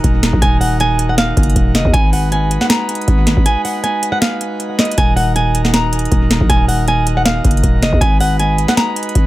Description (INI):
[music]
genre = hip hop, trap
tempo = 158 BPM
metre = 4/4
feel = half-time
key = Eb minor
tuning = A4 = 440 Hz
[part]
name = flamenco guitar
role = melody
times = 0.0-9.3 s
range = Eb5 to Bb5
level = -18 LUFS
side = equal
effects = low-pass filter, analog delay
[part]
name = chamber organ, principal chorus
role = sustained chords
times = 0.0-9.3 s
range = Eb3 to Cb5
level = -22 LUFS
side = right 2 dB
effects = none
[part]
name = growling 808-style bass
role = bass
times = 0.0-9.3 s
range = Eb1 to Eb2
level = -16 LUFS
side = equal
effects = none
[part]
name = booming analog drum machine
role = drums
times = 0.0-9.3 s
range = hi-hat, kick drum, snare drum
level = -15 LUFS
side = equal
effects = overdrive, analog delay
[sound]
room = light reverb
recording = echo-heavy mix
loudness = -12 LUFS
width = side -17 dB against mid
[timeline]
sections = 0.0-9.3 A section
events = break 3.5-5.0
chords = 0.0 Ebm; 1.9 Abm7; 5.0 Ebm; 8.0 Abm7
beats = 0.04 | 0.42 0.80 1.18 1.56 | 1.94 2.32 2.70 3.08 | 3.46 3.84 4.22 4.60 | 4.98 5.36 5.74 6.12 | 6.50 6.88 7.26 7.63 | 8.02 8.39 8.78 9.15